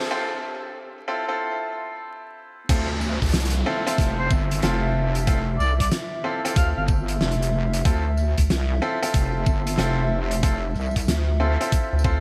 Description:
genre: glitch hop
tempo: 93 BPM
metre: 4/4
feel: swing 64% on 16ths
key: D minor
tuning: A4 = 440 Hz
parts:
  - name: bright grand piano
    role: stabs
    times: 0.0-12.2 s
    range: C4 to A4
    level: -30 LUFS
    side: equal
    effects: sidechain pumping, delay
  - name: oversized low-tuned drum kit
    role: drums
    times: 0.0-12.1 s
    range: crash cymbal, hi-hat, rim click, snare drum, tambourine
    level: -32 LUFS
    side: equal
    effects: none
  - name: riser and downlifter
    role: sound effects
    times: 0.0-7.9 s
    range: none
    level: -38 LUFS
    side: equal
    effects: none
  - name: warbly tape-like pad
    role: texture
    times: 0.0-12.2 s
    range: D4 to E5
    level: -36 LUFS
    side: equal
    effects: chorus, built-in reverb, sidechain pumping
  - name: wobble bass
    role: bass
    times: 2.7-11.6 s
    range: F1 to D2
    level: -26 LUFS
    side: equal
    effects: chorus, tube saturation
  - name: electronic kick drum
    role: drums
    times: 2.7-12.2 s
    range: none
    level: -24 LUFS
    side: equal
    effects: high-pass filter on kick, high-pass filter on room
  - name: rubbery square bass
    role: bass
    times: 3.2-3.3, 8.4-12.2 s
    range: D2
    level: -24 LUFS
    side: equal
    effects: tube saturation
  - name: mellow harmonica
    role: melody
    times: 4.2-6.8 s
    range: C5 to F5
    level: -32 LUFS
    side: equal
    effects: delay
room: light reverb, small room ambience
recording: bright 1980s-style digital production, vinyl crackle, high-pass filter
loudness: -23 LUFS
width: mono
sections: 0.0-2.7 A section; 2.7-12.2 B section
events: build-up 0.0-2.7; break 0.1-2.7; drop 2.7-12.2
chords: 0.0 Dm9 (rootless); 2.7 Dm9

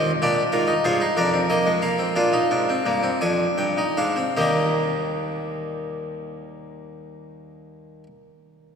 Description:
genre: classical, baroque-style 4-part fugue for harpsichord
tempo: 51-64 BPM (dotted quarters)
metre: 12/8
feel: straight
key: Eb major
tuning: A4 = 441 Hz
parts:
  - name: harpsichord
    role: solo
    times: 0.0-8.1 s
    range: Eb2 to Ab5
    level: -21 LUFS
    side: equal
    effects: none
room: wet church reverb, RT60 3.9 s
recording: none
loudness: -20 LUFS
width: side -6 dB against mid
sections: 0.0-4.4 A section; 4.4-8.8 B section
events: slowing down 0.0-4.4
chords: 0.2 Bb7; 4.4 Eb

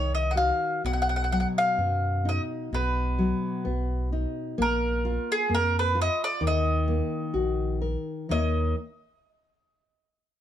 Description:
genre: fado-style ballad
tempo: 64 BPM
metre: 2/4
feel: rubato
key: Eb minor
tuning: A4 = 445 Hz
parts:
  - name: mandolin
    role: melody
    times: 0.0-8.7 s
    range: Ab4 to Gb5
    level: -27 LUFS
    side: equal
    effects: plate reverb
  - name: nylon-string guitar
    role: accompaniment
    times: 0.0-8.7 s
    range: B2 to Db5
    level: -30 LUFS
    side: left 2 dB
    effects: none
  - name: sub bass with octave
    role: bass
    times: 0.0-8.7 s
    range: Bb1 to F#2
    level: -28 LUFS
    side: equal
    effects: none
room: light reverb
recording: none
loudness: -24 LUFS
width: side -10 dB against mid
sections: 0.0-8.3 A section; 8.3-10.2 B section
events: none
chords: 0.0 Ebm; 0.8 B; 4.6 Bb5; 6.4 Ebm; 8.3 Eb5

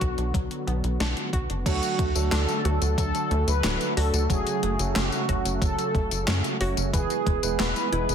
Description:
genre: synthwave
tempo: 91 BPM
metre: 4/4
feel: straight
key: unclear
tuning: A4 = 440 Hz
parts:
  - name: mellow synth brass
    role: melody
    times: 0.0-8.1 s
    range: F#4 to B4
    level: -29 LUFS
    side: equal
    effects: chorus, tape echo
  - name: warm analog pad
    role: sustained chords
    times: 0.0-8.1 s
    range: C#3 to G#4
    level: -32 LUFS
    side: equal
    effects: chorus, sidechain pumping
  - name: analog pluck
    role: arpeggios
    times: 0.0-8.1 s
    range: E3 to F#4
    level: -35 LUFS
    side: left 2 dB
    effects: chorus, tape echo
  - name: tight sequencer bass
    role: bass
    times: 0.0-8.1 s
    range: D1 to F#2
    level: -27 LUFS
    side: equal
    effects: tube saturation, sidechain pumping
  - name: electronic kick drum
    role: drums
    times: 0.0-7.4 s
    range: none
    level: -27 LUFS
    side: equal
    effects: none
  - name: gated 80s digital drum machine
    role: drums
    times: 0.0-8.1 s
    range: crash cymbal, handclaps, hi-hat, snare drum, tambourine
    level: -30 LUFS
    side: left 1 dB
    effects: gated reverb, gated reverb snare
  - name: bright tine electric piano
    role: stabs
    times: 1.7-8.1 s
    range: F#3 to D5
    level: -32 LUFS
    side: right 5 dB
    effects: medium stereo tremolo, tape echo
room: light reverb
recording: dense, heavily limited modern master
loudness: -22 LUFS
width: side -8 dB against mid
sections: 0.0-1.7 A section; 1.7-8.1 B section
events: none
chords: 0.0 Bm; 1.7 D; 4.3 F#m; 6.9 E

